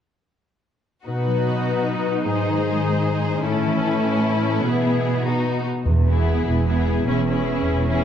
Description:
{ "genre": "cinematic, heroic adventure film score", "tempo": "100 BPM (dotted quarters)", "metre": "6/8", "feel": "straight", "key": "E major", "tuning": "A4 = 439 Hz", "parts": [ { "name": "warm symphonic violin section", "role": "melody", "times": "1.1-8.0 s", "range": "F#4 to B#4", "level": "-29 LUFS", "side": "left 8 dB", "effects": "none" }, { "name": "clear symphonic violin section", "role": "second line", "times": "1.1-8.0 s", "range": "D#4 to G#4", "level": "-28 LUFS", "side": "left 3 dB", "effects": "none" }, { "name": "rich studio viola section", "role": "accompaniment", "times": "1.1-8.0 s", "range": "B3 to D#4", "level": "-26 LUFS", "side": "right 2 dB", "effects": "none" }, { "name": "concert harp", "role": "arpeggios", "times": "1.1-8.0 s", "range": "E2 to B#4", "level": "-26 LUFS", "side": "left 8 dB", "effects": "none" }, { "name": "warm symphonic cello section", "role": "bass", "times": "1.1-8.0 s", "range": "E2 to B2", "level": "-23 LUFS", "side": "right 3 dB", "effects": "none" }, { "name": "warm symphonic double bass section", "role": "bass", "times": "5.9-8.0 s", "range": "E1", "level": "-24 LUFS", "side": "right 4 dB", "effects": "none" }, { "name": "timpani", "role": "percussion", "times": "5.9-6.4 s", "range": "E2", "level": "-23 LUFS", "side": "equal", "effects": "none" } ], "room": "moderate concert hall reverb, RT60 2.0 s", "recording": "dark, warm production", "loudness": "-18 LUFS", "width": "side -9 dB against mid", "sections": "1.1-5.9 A section; 5.9-8.0 B section", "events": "build-up 5.9-8.0", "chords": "1.1 B; 2.3 G#; 3.5 A; 4.7 E/B; 5.3 B; 5.9 E; 7.1 C#m/E", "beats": "| 1.08 1.68 | 2.28 2.88 | 3.47 4.07 | 4.66 5.26 | 5.87 6.47 | 7.07 7.67" }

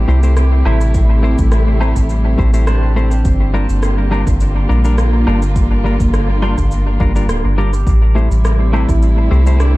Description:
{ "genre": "ambient dub", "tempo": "104 BPM", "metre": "4/4", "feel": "swing 53% on 16ths", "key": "G dorian", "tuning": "A4 = 440 Hz", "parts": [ { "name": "dark studio string section", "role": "sustained chords", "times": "0.0-9.8 s", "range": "C3 to G4", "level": "-21 LUFS", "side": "equal", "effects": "none" }, { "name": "pedal steel guitar", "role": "arpeggios", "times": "0.0-9.8 s", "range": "C4 to C6", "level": "-27 LUFS", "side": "right 3 dB", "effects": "tape echo" }, { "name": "soft dub sub bass", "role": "bass", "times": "0.0-9.8 s", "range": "D1 to C2", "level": "-13 LUFS", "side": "equal", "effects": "tube saturation" }, { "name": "semi-hollow electric guitar", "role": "stabs", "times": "0.1-9.6 s", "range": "G3 to C5", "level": "-23 LUFS", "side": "left 3 dB", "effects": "dub echo" }, { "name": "electronic cabasa, rim click and woodblock", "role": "drums", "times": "0.2-9.7 s", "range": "none", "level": "-26 LUFS", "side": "right 1 dB", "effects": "dub echo" }, { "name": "electronic kick drum", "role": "drums", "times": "0.9-9.0 s", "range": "none", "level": "-17 LUFS", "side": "equal", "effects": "overdrive" } ], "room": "light reverb", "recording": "dark, warm production", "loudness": "-11 LUFS", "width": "side -19 dB against mid", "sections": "0.0-9.8 A section", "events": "none", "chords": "0.0 Am7; 3.3 Gm7; 7.9 Am7", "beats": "0.37 | 0.95 1.52 2.10 2.68 | 3.25 3.83 4.41 4.98 | 5.56 6.14 6.71 7.29 | 7.87 8.45 9.02 9.60" }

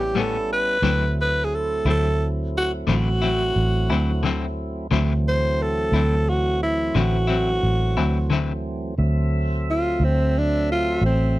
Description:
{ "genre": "slow blues", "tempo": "59 BPM (dotted quarters)", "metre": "12/8", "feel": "straight", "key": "D mixolydian", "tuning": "A4 = 440 Hz", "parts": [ { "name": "growling tenor saxophone", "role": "melody", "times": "0.0-11.4 s", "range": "C4 to C5", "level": "-23 LUFS", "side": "equal", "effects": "none" }, { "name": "electric guitar at the edge of break-up", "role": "accompaniment", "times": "0.0-8.5 s", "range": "A2 to E4", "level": "-24 LUFS", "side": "left 6 dB", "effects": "tremolo" }, { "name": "tonewheel organ", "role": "sustained chords", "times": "0.0-11.4 s", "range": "E3 to E5", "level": "-30 LUFS", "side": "right 2 dB", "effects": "slow rotary speaker" }, { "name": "vintage muted fingered electric bass", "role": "bass", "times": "0.0-11.4 s", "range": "A1 to D2", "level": "-22 LUFS", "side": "equal", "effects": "none" } ], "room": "little or no reverb", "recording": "dry, close 1970s-style studio recording", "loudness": "-19 LUFS", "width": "side -17 dB against mid", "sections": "0.0-9.0 A section; 9.0-11.4 B section", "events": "tenor saxophone solo 9.0-11.4", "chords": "0.0 A9; 0.8 D9", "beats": "| 0.83 1.85 2.87 3.89 | 4.91 5.93 6.95 7.96 | 8.98 10.00 11.02" }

